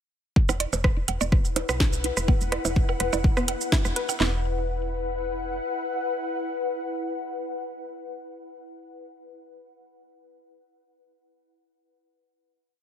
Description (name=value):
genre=minimal techno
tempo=125 BPM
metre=4/4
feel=swing 53% on 16ths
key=unclear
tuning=A4 = 440 Hz
part: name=house drum kit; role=drums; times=0.4-4.3 s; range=handclaps, kick drum, snare drum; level=-22 LUFS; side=equal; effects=none
part: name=ethereal airy pad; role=texture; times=1.3-8.8 s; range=E4 to F#5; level=-31 LUFS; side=left 3 dB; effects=ensemble chorus, built-in reverb, sidechain pumping
part: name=hollow square pluck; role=riff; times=0.5-4.4 s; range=B3 to B4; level=-33 LUFS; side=right 1 dB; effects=chorus, sidechain pumping, dub echo
part: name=woody FM bass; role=bass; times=0.5-5.6 s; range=E1 to B1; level=-30 LUFS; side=equal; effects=sidechain pumping
part: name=house drum kit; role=drums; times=0.5-4.2 s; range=hi-hat, shaker, snare drum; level=-29 LUFS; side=right 2 dB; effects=none
part: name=electronic rim click and percussion blips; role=percussion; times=0.5-4.2 s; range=none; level=-30 LUFS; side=right 6 dB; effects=ping-pong delay
room=light reverb, digital ambience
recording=none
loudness=-23 LUFS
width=side -10 dB against mid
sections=0.4-4.2 build; 4.2-8.0 final chord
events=build-up 0.4-4.2; filter sweep on synth arpeggio sound 0.4-4.2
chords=0.4 E5